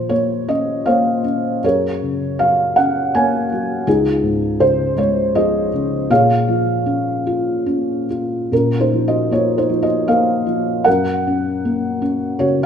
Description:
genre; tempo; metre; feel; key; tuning
classical, lyrical solo piano; 71-83 BPM; 3/4; rubato; Bb minor; A4 = 441 Hz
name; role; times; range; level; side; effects
felt-muted upright piano; solo; 0.0-12.7 s; Db2 to Ab5; -15 LUFS; equal; none
room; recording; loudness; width
moderate recital hall reverb, RT60 1.6 s; minimal, uncompressed stereo recording; -15 LUFS; side -8 dB against mid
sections
0.0-8.5 A section; 8.5-12.7 B section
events
none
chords
0.0 Bbmadd9; 1.6 Gbadd9; 3.9 Dbadd9; 6.1 Bbm7; 8.5 Bbm; 10.9 Gb

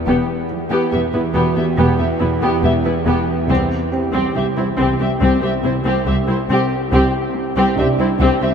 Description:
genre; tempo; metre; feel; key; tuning
cinematic; 70 BPM; 4/4; straight; unclear; A4 = 440 Hz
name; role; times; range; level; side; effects
bowed-like drone; drone; 0.0-8.5 s; C2 to E2; -22 LUFS; right 2 dB; built-in reverb
felt-muted upright piano; texture; 0.0-8.5 s; D4 to G5; -30 LUFS; right 2 dB; none
muted studio violin section; melody; 0.1-8.5 s; G4 to E5; -22 LUFS; equal; none
muted studio viola section; accompaniment; 0.1-8.5 s; B3 to G4; -20 LUFS; left 2 dB; none
muted studio cello section; riff; 0.1-8.5 s; E2 to C4; -25 LUFS; right 1 dB; none
muted studio cello section; bass; 0.1-8.5 s; C2 to E2; -23 LUFS; equal; none
muted studio double bass section; bass; 0.1-8.3 s; E1 to C2; -22 LUFS; equal; none
room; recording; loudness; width
wet cathedral reverb, RT60 6.5 s; in a vast, echoing space; -15 LUFS; side -7 dB against mid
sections
0.0-8.5 A section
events
none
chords
0.0 Em; 3.5 C5

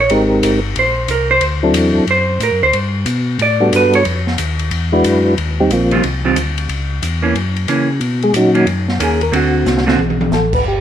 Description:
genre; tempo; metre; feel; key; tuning
soul jazz organ trio; 182 BPM; 4/4; swing 64% on 8ths; unclear; A4 = 441 Hz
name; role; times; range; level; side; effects
vintage hollow-body jazz guitar; accompaniment; 0.0-10.0 s; D3 to D5; -16 LUFS; right 3 dB; none
mellow tonewheel organ; bass; 0.0-10.8 s; G1 to Db3; -19 LUFS; left 1 dB; chorus vibrato, slow rotary speaker
percussive tonewheel organ; melody; 0.1-6.0, 8.2-10.8 s; F3 to B4; -14 LUFS; equal; slow rotary speaker, chorus vibrato
open jazz drum kit; drums; 0.1-10.6 s; crash cymbal, hi-hat, kick drum, ride cymbal, snare drum, toms; -21 LUFS; left 2 dB; none
room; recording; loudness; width
moderate large studio reverb, RT60 1.3 s; none; -12 LUFS; side -10 dB against mid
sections
0.0-5.4 A section; 5.4-10.8 A section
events
hollow-body jazz guitar solo 0.0-5.4; tonewheel organ solo 5.4-10.8; drum fill 9.7-10.3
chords
0.1 Abmaj9; 1.4 D7; 2.7 Gmaj9; 4.1 Ebsus2; 4.7 E9; 5.4 Eb69; 6.7 Dbm; 7.3 Gb7; 8.0 Bmaj9; 9.3 D7

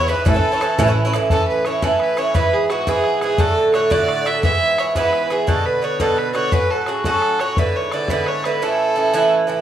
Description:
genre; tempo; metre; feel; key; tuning
celtic folk, Celtic jig; 115 BPM (dotted quarters); 6/8; straight; A major; A4 = 440 Hz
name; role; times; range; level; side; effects
rich fiddle; melody; 0.0-9.3 s; F#4 to E5; -21 LUFS; right 1 dB; none
accordion; second line; 0.0-0.9 s; A4 to B4; -25 LUFS; left 3 dB; none
Irish bouzouki; accompaniment; 0.0-9.6 s; G#2 to F#4; -18 LUFS; right 2 dB; none
plucky analog bass; bass; 0.0-1.2 s; A1 to E2; -19 LUFS; right 1 dB; none
bodhran; percussion; 0.3-8.5 s; none; -22 LUFS; left 1 dB; none
room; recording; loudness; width
moderate studio ambience, RT60 0.4 s; studio reverb; -15 LUFS; side -10 dB against mid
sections
0.0-1.3 A section; 1.3-9.6 B section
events
none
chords
0.3 A; 2.3 E; 3.4 D; 4.4 E; 5.5 Bm; 6.5 F#m; 7.6 E7; 8.6 A

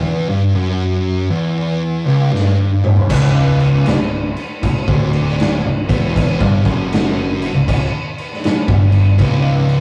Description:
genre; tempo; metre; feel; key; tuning
stoner and doom metal; 79 BPM; 4/4; swing 65% on 8ths; unclear; A4 = 439 Hz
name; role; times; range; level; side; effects
thick fuzz guitar; riff; 0.0-9.8 s; C#2 to G2; -19 LUFS; equal; distortion
thick fuzz guitar; riff; 0.0-9.8 s; C#2 to G2; -21 LUFS; equal; distortion
fuzz fingered electric bass; bass; 0.0-9.8 s; C#1 to G1; -25 LUFS; equal; overdrive
raw garage drum kit; drums; 2.4-9.8 s; crash cymbal, kick drum, snare drum, toms; -20 LUFS; equal; none
room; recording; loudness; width
wet booth ambience, RT60 0.2 s; rough rehearsal-room recording, warm saturation; -16 LUFS; mono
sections
0.0-3.1 A section; 3.1-9.8 B section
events
break 0.0-3.1; drum fill 2.3-3.1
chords
0.0 C#m

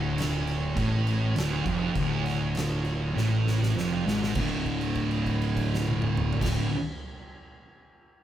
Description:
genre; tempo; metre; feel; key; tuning
stoner and doom metal; 100 BPM; 4/4; straight; D minor; A4 = 439 Hz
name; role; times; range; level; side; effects
thick fuzz guitar; riff; 0.0-6.7 s; D2 to D3; -28 LUFS; left 2 dB; distortion
thick fuzz guitar; riff; 0.0-6.7 s; D2 to D3; -30 LUFS; right 6 dB; distortion
fuzz fingered electric bass; bass; 0.0-6.7 s; D1 to A1; -34 LUFS; right 1 dB; overdrive, tube saturation
oversized low-tuned drum kit; drums; 0.2-6.6 s; crash cymbal, kick drum, snare drum, toms; -33 LUFS; right 1 dB; none
room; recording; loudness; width
light reverb; band playing live in one room; -24 LUFS; side -11 dB against mid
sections
0.0-4.4 A section; 4.4-6.8 B section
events
drum fill 3.2-4.4; held note 4.4-6.4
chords
0.0 Dm; 4.4 D5

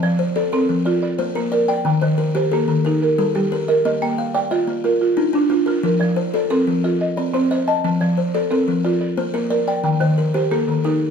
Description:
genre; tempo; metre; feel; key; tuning
southern african traditional, mbira-style interlocking cycle; 120 BPM (dotted quarters); 12/8; straight; F mixolydian; A4 = 440 Hz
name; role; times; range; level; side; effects
buzzing kalimba; arpeggios; 0.0-11.1 s; Eb3 to A5; -20 LUFS; left 4 dB; none
buzzing marimba with medium mallets; arpeggios; 0.0-11.0 s; Eb3 to A5; -19 LUFS; right 3 dB; none
room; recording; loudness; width
wet studio reverb, RT60 0.6 s; band playing live in one room; -16 LUFS; side -6 dB against mid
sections
0.0-11.1 A section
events
none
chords
0.0 F; 0.9 Bb; 1.9 Eb; 2.9 Gm; 3.9 Bb; 4.8 Dm; 5.8 F; 6.8 Cm; 7.8 F; 8.8 Bb; 9.8 Eb

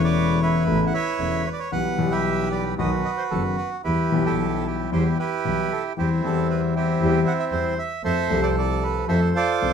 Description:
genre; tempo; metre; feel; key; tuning
tango; 114 BPM; 4/4; rubato; E minor; A4 = 438 Hz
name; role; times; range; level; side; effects
bandoneon; melody; 0.0-9.7 s; C4 to F#5; -24 LUFS; right 5 dB; none
warm concert grand piano; accompaniment; 0.0-9.7 s; E1 to A4; -23 LUFS; left 4 dB; none
rich double bass; bass; 0.0-9.7 s; E1 to F2; -29 LUFS; right 2 dB; none
room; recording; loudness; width
wet studio reverb, RT60 0.6 s; minimal, uncompressed stereo recording; -20 LUFS; side -7 dB against mid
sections
0.0-9.7 A section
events
none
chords
0.0 Aadd9; 1.7 Em/B; 2.8 B; 3.9 Em; 6.0 C/E; 8.0 F

